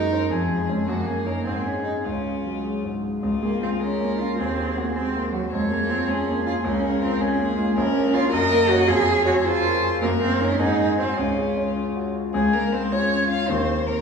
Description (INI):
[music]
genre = quick classical-period movement for piano trio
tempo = 105 BPM (dotted quarters)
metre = 6/8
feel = straight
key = Db major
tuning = A4 = 440 Hz
[part]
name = rich violin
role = melody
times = 0.0-14.0 s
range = F4 to F5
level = -28 LUFS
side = left 4 dB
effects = none
[part]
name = rich cello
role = second line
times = 0.0-14.0 s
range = F3 to Bb4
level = -23 LUFS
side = right 3 dB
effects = none
[part]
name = clear concert grand piano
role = accompaniment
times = 0.0-14.0 s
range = Bb1 to Db5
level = -24 LUFS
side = left 1 dB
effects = none
[sound]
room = wet recital hall reverb, RT60 1.7 s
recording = heard from further back in the room, small room ambience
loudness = -20 LUFS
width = side -6 dB against mid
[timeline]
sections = 0.0-3.2 A section; 3.2-12.3 B section; 12.3-14.0 B section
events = none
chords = 0.3 Db/F; 0.9 Ebm7/Gb; 1.5 Ab5; 2.0 Db; 4.4 Ab7/Eb; 5.5 Db/F; 6.6 Db; 7.8 Bbm; 8.3 Gb; 8.9 Db/F; 10.0 Ebm7/Gb; 10.6 Ab7; 11.2 Db; 13.5 Ab/Eb (rootless)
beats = 0.32 | 0.88 1.46 | 2.05 2.64 | 3.23 3.81 | 4.38 4.95 | 5.51 6.08 | 6.64 7.21 | 7.77 8.33 | 8.89 9.45 | 10.02 10.59 | 11.18 11.76 | 12.35 12.92 | 13.49